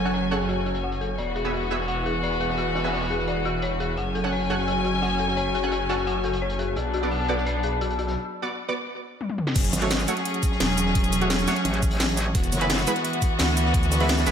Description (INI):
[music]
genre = dark technical drum and bass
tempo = 172 BPM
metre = 4/4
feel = straight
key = F# minor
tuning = A4 = 438 Hz
[part]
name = warm chamber string section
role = sustained chords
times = 0.0-14.3 s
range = E3 to G#5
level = -26 LUFS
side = equal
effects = sidechain pumping
[part]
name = dark detuned synth bell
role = arpeggios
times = 0.0-8.1 s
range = F#4 to F#5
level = -31 LUFS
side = left 3 dB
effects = chorus, tremolo, sidechain pumping, low-pass filter, tape echo
[part]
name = snarling distorted saw bass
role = bass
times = 0.0-14.3 s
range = E1 to D2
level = -28 LUFS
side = equal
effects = overdrive, sidechain pumping
[part]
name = warbly tape-like pad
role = texture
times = 0.0-8.2 s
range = E4 to B5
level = -34 LUFS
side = left 3 dB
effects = chorus, built-in reverb, sidechain pumping
[part]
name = orchestra-hit-like synth stab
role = stabs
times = 0.1-14.3 s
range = G#3 to F#5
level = -30 LUFS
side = right 3 dB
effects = built-in reverb, tape echo
[part]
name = crunchy breakbeat drum kit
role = drums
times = 0.1-14.3 s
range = hi-hat, snare drum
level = -39 LUFS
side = equal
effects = high-pass filter on hats, low-pass filter on hats, studio reverb, high-pass filter on snare, low-pass filter on snare, high-pass filter on room, low-pass filter on room
[part]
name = drum and bass drum kit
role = drums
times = 9.2-14.3 s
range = cabasa, crash cymbal, hi-hat, snare drum, toms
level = -27 LUFS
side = equal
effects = overdrive, low-pass filter on hats, studio reverb, low-pass filter on perc, low-pass filter on snare, low-pass filter on cymbals, low-pass filter on toms
[part]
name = electronic kick drum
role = drums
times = 9.6-13.8 s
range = none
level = -23 LUFS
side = equal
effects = studio reverb
[part]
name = metallic wobble bass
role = bass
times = 9.7-12.9 s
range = F#1 to A1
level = -26 LUFS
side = equal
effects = chorus
[sound]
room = moderate plate reverb, RT60 1.7 s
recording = dreamy mix soaked in reverb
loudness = -22 LUFS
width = side -8 dB against mid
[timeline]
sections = 0.0-9.6 A section; 9.6-14.3 B section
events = filter sweep on synth bell 0.0-9.6; break 8.2-9.6; drum fill 9.2-9.6; drop 9.6-14.3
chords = 0.0 F#m; 1.2 E; 4.0 F#m; 6.8 Bm; 9.6 F#m; 12.3 E